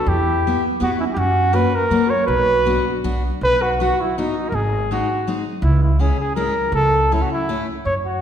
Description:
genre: alpine folk, alpine dance band.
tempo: 162 BPM.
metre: 3/4.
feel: rubato.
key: B minor, B major from 3.4 s.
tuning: A4 = 440 Hz.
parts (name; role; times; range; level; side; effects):
warm flugelhorn; melody; 0.0-8.2 s; D#4 to C#5; -19 LUFS; equal; none.
mellow clarinet; second line; 0.0-3.0 s; B3 to A#4; -26 LUFS; right 3 dB; none.
upright bass; bass; 0.1-8.2 s; G#1 to F#2; -21 LUFS; equal; none.
picked steel-string acoustic guitar; accompaniment; 0.5-7.7 s; G#3 to G4; -25 LUFS; left 4 dB; none.
room: wet scoring stage reverb, RT60 1.4 s.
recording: recorded in a church or concert hall.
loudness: -16 LUFS.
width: side -9 dB against mid.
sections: 0.0-3.4 A section; 3.4-8.2 B section.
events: none.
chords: 0.1 Em; 1.2 F#; 2.3 Bm; 3.4 B; 4.5 G#7; 5.6 C#m; 6.7 A/C#.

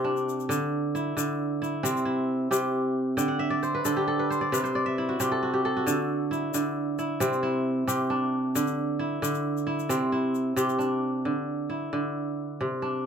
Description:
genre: west african traditional, West African string and xylophone music.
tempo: 89 BPM (dotted quarters).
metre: 12/8.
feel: straight.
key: D mixolydian.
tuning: A4 = 438 Hz.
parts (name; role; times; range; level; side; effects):
kora; arpeggios; 0.0-13.1 s; C3 to G5; -25 LUFS; right 1 dB; none.
tube shaker; percussion; 0.2-10.9 s; none; -34 LUFS; left 12 dB; none.
room: moderate small room reverb, RT60 0.5 s.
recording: none.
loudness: -25 LUFS.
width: side -7 dB against mid.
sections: 0.0-11.3 A section; 11.3-13.1 B section.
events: kora fill 3.2-5.9.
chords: 0.5 Dsus2; 1.8 C; 3.2 N.C.; 5.9 Dadd9; 7.2 C; 8.6 Dsus2; 9.9 C; 11.3 Dsus2.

